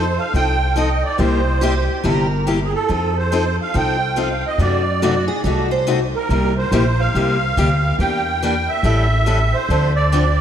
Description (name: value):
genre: acoustic string swing (jazz manouche)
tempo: 141 BPM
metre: 4/4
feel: swing 62% on 8ths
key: C mixolydian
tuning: A4 = 438 Hz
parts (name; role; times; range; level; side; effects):
- musette accordion; melody; 0.0-10.4 s; Ab4 to G5; -20 LUFS; right 4 dB; tape echo
- picked steel-string acoustic guitar; accompaniment; 0.0-10.2 s; C3 to A4; -21 LUFS; left 4 dB; none
- upright bass; bass; 0.0-10.4 s; G1 to F#2; -19 LUFS; equal; none
- picked steel-string acoustic guitar; second line; 1.6-6.0 s; F#4 to C5; -25 LUFS; right 2 dB; analog chorus
room: moderate lush hall reverb, RT60 3.0 s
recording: dreamy mix soaked in reverb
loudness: -15 LUFS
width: side -9 dB against mid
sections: 0.0-10.4 A section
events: none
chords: 0.0 F7; 1.2 C7; 2.9 F7; 4.6 F#dim7; 6.3 C7; 8.0 Em7b5; 8.8 A7; 9.7 Dm7